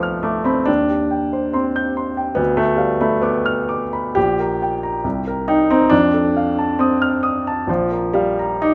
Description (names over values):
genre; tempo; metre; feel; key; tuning
classical, romantic character piece for solo piano; 69 BPM; 2/4; uneven beats, rubato; unclear; A4 = 439 Hz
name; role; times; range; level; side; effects
warm grand piano; solo; 0.0-8.7 s; Bb1 to G6; -18 LUFS; equal; none
room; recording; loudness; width
light reverb; close, detailed microphones; -18 LUFS; mono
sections
0.0-8.7 A section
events
none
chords
0.0 Bdim/C; 0.7 Cm/Eb; 2.4 Bdim/D; 4.2 Gm/Bb; 5.0 C5; 5.9 F7; 7.7 Bb5